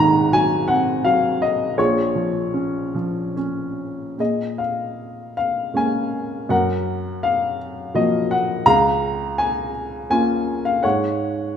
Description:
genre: classical, lyrical solo piano.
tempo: 71-85 BPM.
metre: 3/4.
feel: rubato.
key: unclear.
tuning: A4 = 441 Hz.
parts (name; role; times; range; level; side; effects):
dark baby grand piano; solo; 0.0-11.6 s; Ab1 to Bb5; -18 LUFS; left 1 dB; none.
room: moderate concert hall reverb, RT60 2.2 s.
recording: minimal, uncompressed stereo recording.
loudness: -18 LUFS.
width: side -8 dB against mid.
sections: 0.0-4.2 A section; 4.2-11.6 B section.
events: none.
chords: 0.0 Ab7; 1.8 Bbm7; 6.5 Gbmaj7; 8.7 Db6; 10.8 Ab7sus4.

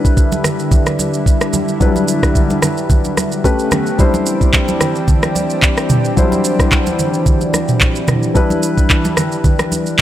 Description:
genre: amapiano.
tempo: 110 BPM.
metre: 4/4.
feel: swing 55% on 16ths.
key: E minor.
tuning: A4 = 439 Hz.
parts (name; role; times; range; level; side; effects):
warm baby grand piano; accompaniment; 0.0-10.0 s; F#3 to C5; -19 LUFS; left 3 dB; none.
lush unison pad; sustained chords; 0.0-10.0 s; C#3 to G4; -20 LUFS; right 1 dB; chorus.
smooth R&B drum kit; drums; 0.0-10.0 s; handclaps, kick drum, rim click, shaker, toms; -13 LUFS; equal; none.
congas; percussion; 0.3-9.9 s; none; -22 LUFS; right 2 dB; none.
room: light reverb.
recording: faint mains hum.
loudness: -12 LUFS.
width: side -12 dB against mid.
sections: 0.0-10.0 A section.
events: none.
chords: 0.0 Em7; 3.4 A9; 4.0 D9sus4; 8.4 Em7.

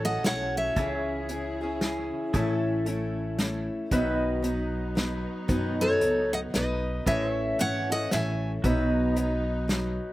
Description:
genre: honky-tonk and classic country.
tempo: 114 BPM.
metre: 3/4.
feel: swing 60% on 8ths.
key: unclear.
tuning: A4 = 441 Hz.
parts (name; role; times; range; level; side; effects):
picked steel-string acoustic guitar; melody; 0.0-2.1, 5.8-8.5 s; A4 to G#5; -27 LUFS; equal; slapback echo.
picked acoustic archtop guitar; accompaniment; 0.0-10.1 s; A2 to B4; -29 LUFS; left 1 dB; none.
pedal steel guitar; sustained chords; 0.0-10.1 s; F#4 to F#5; -40 LUFS; right 1 dB; wide subtle chorus.
warm studio string section; sustained chords; 0.0-10.1 s; C#3 to A4; -38 LUFS; right 1 dB; none.
upright bass; bass; 0.0-10.0 s; G#1 to F#2; -32 LUFS; equal; none.
unplugged drum kit; drums; 0.2-9.8 s; hi-hat, kick drum, snare drum; -29 LUFS; equal; none.
room: little or no reverb.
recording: recorded outdoors, with no room sound.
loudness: -25 LUFS.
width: side -16 dB against mid.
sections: 0.0-10.1 A section.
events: none.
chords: 0.0 F#m7; 0.8 C#m; 2.3 A; 3.9 B; 7.1 A; 8.6 B.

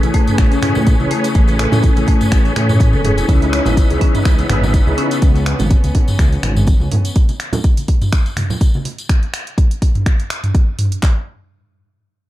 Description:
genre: afro house.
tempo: 124 BPM.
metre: 4/4.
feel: swing 55% on 16ths.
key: C# minor.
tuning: A4 = 443 Hz.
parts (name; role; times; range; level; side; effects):
warm chamber string section; sustained chords; 0.0-7.1 s; C#3 to C#4; -23 LUFS; left 1 dB; sidechain pumping.
marimba with medium mallets; arpeggios; 0.0-5.1 s; A3 to C#5; -22 LUFS; left 3 dB; sidechain pumping, ping-pong delay.
overdriven tonewheel organ; stabs; 0.0-5.2 s; C#4 to B4; -22 LUFS; right 3 dB; chorus vibrato, fast rotary speaker, sidechain pumping, ping-pong delay.
dark detuned saw bass; bass; 0.0-6.9 s; E1 to A2; -18 LUFS; equal; sidechain pumping.
house drum kit; drums; 0.0-11.0 s; finger snaps, hi-hat, toms; -21 LUFS; equal; none.
congas; percussion; 0.0-9.0 s; none; -24 LUFS; right 2 dB; none.
tambourine; percussion; 0.0-9.1 s; none; -33 LUFS; left 3 dB; none.
house drum kit; drums; 0.1-11.2 s; handclaps, kick drum; -13 LUFS; equal; none.
room: small room ambience.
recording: dark, warm production.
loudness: -12 LUFS.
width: side -15 dB against mid.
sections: 0.0-11.0 A section; 11.0-12.3 B section.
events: drop 0.0-11.0.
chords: 0.0 Amaj7; 3.3 C#m7; 7.2 N.C..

